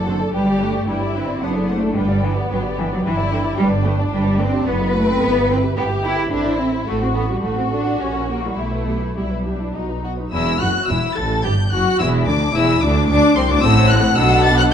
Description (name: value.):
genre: quick classical-period movement for string orchestra.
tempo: 109 BPM.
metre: 3/4.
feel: rubato.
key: G major, E minor from 3.6 s.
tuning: A4 = 440 Hz.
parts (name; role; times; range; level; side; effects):
dark chamber violin section; melody; 0.0-14.6 s; A4 to A6; -25 LUFS; left 4 dB; none.
warm studio violin section; second line; 0.0-14.7 s; B3 to F#5; -23 LUFS; left 3 dB; none.
dark studio viola section; accompaniment; 0.0-14.7 s; B3 to D5; -24 LUFS; equal; none.
warm chamber double bass section; bass; 0.0-14.7 s; E1 to D2; -22 LUFS; right 2 dB; none.
warm chamber cello section; bass; 0.1-14.7 s; C2 to E4; -20 LUFS; right 1 dB; none.
room: moderate recital hall reverb, RT60 1.5 s.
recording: dark, warm production.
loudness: -16 LUFS.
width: side -8 dB against mid.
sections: 0.0-10.3 A section; 10.3-14.7 B section.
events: none.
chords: 0.3 G; 1.4 D7/F#; 2.0 G; 4.7 B7/F#; 5.2 Em/G; 6.3 Am; 6.9 F#dim/A; 8.0 A#dim7; 8.6 Em/B; 9.8 B; 10.3 Em; 12.0 Dsus2/E; 13.1 Csus2; 13.6 F#dim/A.